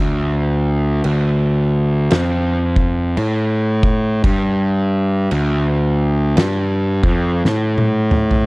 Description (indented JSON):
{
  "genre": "stoner and doom metal",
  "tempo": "56 BPM",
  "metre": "4/4",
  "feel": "swing 62% on 8ths",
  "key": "D minor",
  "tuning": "A4 = 436 Hz",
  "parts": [
    { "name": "fuzz picked electric bass", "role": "bass", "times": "0.0-8.5 s", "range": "D2 to A2", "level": "-15 LUFS", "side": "equal", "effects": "overdrive" },
    { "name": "oversized low-tuned drum kit", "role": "drums", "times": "1.0-8.5 s", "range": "crash cymbal, kick drum, snare drum, toms", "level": "-19 LUFS", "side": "equal", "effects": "none" }
  ],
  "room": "little or no reverb",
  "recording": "dry, close 1970s-style studio recording",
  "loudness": "-14 LUFS",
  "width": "side -27 dB against mid",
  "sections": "0.0-8.5 A section",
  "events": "drum fill 7.5-8.5",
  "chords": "none",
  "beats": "1.05 2.12 3.18 | 4.25 5.32 6.38 7.45"
}